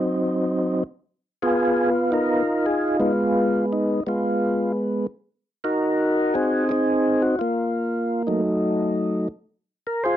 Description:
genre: jazz.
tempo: 114 BPM.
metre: 4/4.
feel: swing 67% on 8ths.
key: unclear.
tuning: A4 = 440 Hz.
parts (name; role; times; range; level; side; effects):
percussive tonewheel organ; solo; 0.0-10.2 s; Gb3 to C5; -20 LUFS; equal; slow rotary speaker, overdrive.
room: moderate studio ambience, RT60 0.5 s.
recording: dry, close 1970s-style studio recording.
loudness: -20 LUFS.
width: side -11 dB against mid.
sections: 0.0-10.2 A section.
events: none.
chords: 0.0 Gb(b5, no3); 1.0 Abm69; 5.3 Ab9; 7.4 Gbmaj7; 8.4 Gbm6; 9.5 Bb7(no3).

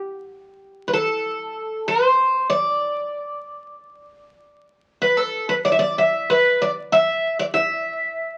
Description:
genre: fado.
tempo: 96 BPM.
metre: 4/4.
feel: rubato.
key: unclear.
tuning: A4 = 439 Hz.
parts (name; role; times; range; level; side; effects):
picked twelve-string acoustic guitar; solo; 0.9-8.4 s; A4 to E5; -21 LUFS; equal; none.
room: light reverb.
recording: very old 78 rpm record, vinyl crackle.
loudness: -21 LUFS.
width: mono.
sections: 0.0-8.4 A section.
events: none.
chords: none.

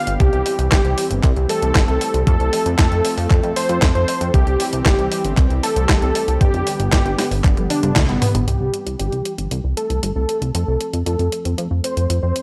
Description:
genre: italo disco.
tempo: 116 BPM.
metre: 4/4.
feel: straight.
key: C major.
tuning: A4 = 440 Hz.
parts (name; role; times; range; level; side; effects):
unison lead; melody; 0.0-12.4 s; B3 to F5; -24 LUFS; equal; tape echo.
warm analog pad; sustained chords; 0.0-12.4 s; D3 to A4; -30 LUFS; equal; chorus.
chorused synth bass; bass; 0.1-12.3 s; F1 to F2; -23 LUFS; equal; tube saturation.
clean 12-bit digital drum machine; drums; 0.1-12.4 s; handclaps, hi-hat, snare drum, toms; -25 LUFS; equal; overdrive, studio reverb.
electronic kick drum; drums; 0.2-8.1 s; none; -18 LUFS; equal; overdrive, studio reverb.
room: digital ambience.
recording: dry, gritty hardware recording.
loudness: -18 LUFS.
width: mono.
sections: 0.0-8.5 A section; 8.5-12.4 B section.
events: drum fill 7.4-8.5; band accent 8.0.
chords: 0.2 C; 2.3 F; 4.3 C; 6.4 G; 8.5 C; 10.5 F.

